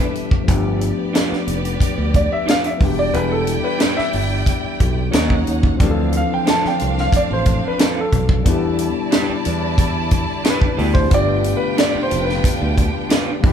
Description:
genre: lush 1970s-style soul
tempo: 90 BPM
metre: 4/4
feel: straight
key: unclear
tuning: A4 = 441 Hz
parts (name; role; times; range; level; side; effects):
- warm grand piano; melody; 0.0-12.5 s; A4 to A5; -22 LUFS; right 1 dB; none
- warm studio violin section; second line; 0.0-13.5 s; B3 to A5; -27 LUFS; right 2 dB; none
- overdriven tine electric piano; accompaniment; 0.0-13.5 s; B2 to A4; -24 LUFS; left 5 dB; none
- tight funk drum kit; drums; 0.2-13.5 s; hi-hat, kick drum, snare drum; -18 LUFS; equal; none
- fingered electric bass; bass; 0.5-13.5 s; E1 to E2; -22 LUFS; right 1 dB; none
- electric guitar through a small old amp; riff; 1.1-13.3 s; C4 to Eb5; -25 LUFS; right 3 dB; none
- rich studio string section; sustained chords; 5.8-13.5 s; B2 to F4; -31 LUFS; right 2 dB; none
room: light reverb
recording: band playing live in one room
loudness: -15 LUFS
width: side -8 dB against mid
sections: 0.0-13.5 A section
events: grand piano solo 0.0-13.5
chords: 0.5 G7; 2.8 Em7; 5.1 Ebm7; 5.8 Dm7; 8.5 Em7; 11.1 G7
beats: | 0.49 1.15 1.82 2.48 | 3.15 3.81 4.47 5.14 | 5.80 6.46 7.13 7.79 | 8.46 9.12 9.79 10.45 | 11.11 11.78 12.44 13.11

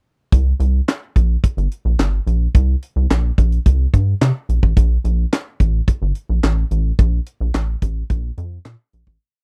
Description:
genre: early-eighties boogie funk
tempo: 108 BPM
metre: 4/4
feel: straight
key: unclear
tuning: A4 = 442 Hz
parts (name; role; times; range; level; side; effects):
- rubbery square bass; bass; 0.3-9.2 s; G1 to C3; -19 LUFS; equal; none
- tight funk drum kit; drums; 0.3-9.2 s; handclaps, hi-hat, kick drum, snare drum; -17 LUFS; equal; none
room: little or no reverb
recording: dry, close 1970s-style studio recording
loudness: -18 LUFS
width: mono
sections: 0.3-9.2 breakdown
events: fade-out 7.0-9.2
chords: none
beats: | 0.32 0.88 1.43 1.99 | 2.54 3.10 3.66 4.21 | 4.77 5.32 5.88 6.43 | 6.99 7.54 8.10 8.66

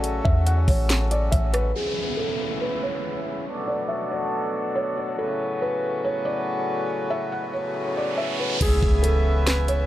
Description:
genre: hip hop, atmospheric cloud-rap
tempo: 140 BPM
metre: 4/4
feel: half-time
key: unclear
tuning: A4 = 442 Hz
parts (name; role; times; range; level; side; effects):
- pedal harmonium; sustained chords; 0.0-9.9 s; A2 to E4; -28 LUFS; left 1 dB; sidechain pumping, low-pass filter
- soft 808-style bass; bass; 0.0-1.7, 8.6-9.9 s; A1 to E2; -22 LUFS; equal; none
- trap drum kit; drums; 0.0-1.6, 8.6-9.8 s; crash cymbal, hi-hat, kick drum, rim click, snare drum; -23 LUFS; equal; none
- felt-muted upright piano; melody; 0.2-9.9 s; G#4 to F#5; -27 LUFS; equal; low-pass filter, digital delay
- downlifter, riser and impact; sound effects; 1.8-9.9 s; none; -32 LUFS; right 1 dB; none
room: light reverb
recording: none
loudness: -22 LUFS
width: side -13 dB against mid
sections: 0.0-1.8 A section; 1.8-8.6 B section; 8.6-9.9 C section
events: filter sweep 1.8-8.6; riser 7.5-8.6; impact 8.6-9.9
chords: 0.0 A6; 1.8 C#m7; 3.5 Bm7; 5.2 A69; 8.6 C#m7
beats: | 0.04 0.47 0.90 1.32 | 1.75 2.18 2.61 3.04 | 3.47 3.90 4.32 4.75 | 5.18 5.61 6.04 6.47 | 6.89 7.32 7.75 8.18 | 8.61 9.04 9.47

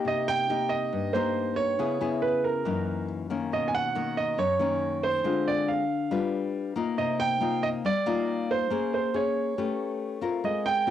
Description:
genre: bossa nova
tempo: 139 BPM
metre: 4/4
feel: straight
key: unclear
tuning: A4 = 440 Hz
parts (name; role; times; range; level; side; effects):
- nylon-string guitar; accompaniment; 0.0-10.9 s; Gb2 to C5; -28 LUFS; left 6 dB; cassette tape
- clear grand piano; melody; 0.1-10.9 s; Bb4 to Ab5; -27 LUFS; right 4 dB; plate reverb
room: moderate studio reverb, RT60 0.6 s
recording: home recording on cassette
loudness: -25 LUFS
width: side -10 dB against mid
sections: 0.0-10.9 A section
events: none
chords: 0.1 Cm7; 1.8 Dbm7; 2.7 Gb6; 3.5 Bmaj9; 5.2 Dm7b5; 6.1 G7; 7.0 Cm11; 8.7 Bbm9; 9.6 A9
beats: | 0.06 0.49 0.93 1.36 | 1.79 2.22 2.65 3.09 | 3.52 3.95 4.38 4.82 | 5.25 5.68 6.11 6.54 | 6.97 7.41 7.84 8.27 | 8.70 9.13 9.56 10.00 | 10.43 10.86

